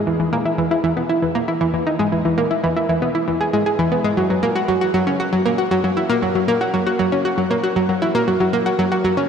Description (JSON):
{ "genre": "ambient", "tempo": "117 BPM", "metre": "4/4", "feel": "straight", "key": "unclear", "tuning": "A4 = 443 Hz", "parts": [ { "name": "analog pluck", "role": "solo", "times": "0.1-9.2 s", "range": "E3 to G#4", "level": "-16 LUFS", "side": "equal", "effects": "chorus, analog delay" } ], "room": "wet huge ambient reverb, RT60 7.8 s", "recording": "dreamy mix soaked in reverb", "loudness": "-16 LUFS", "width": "side -7 dB against mid", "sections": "0.0-9.3 A section", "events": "none", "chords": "none" }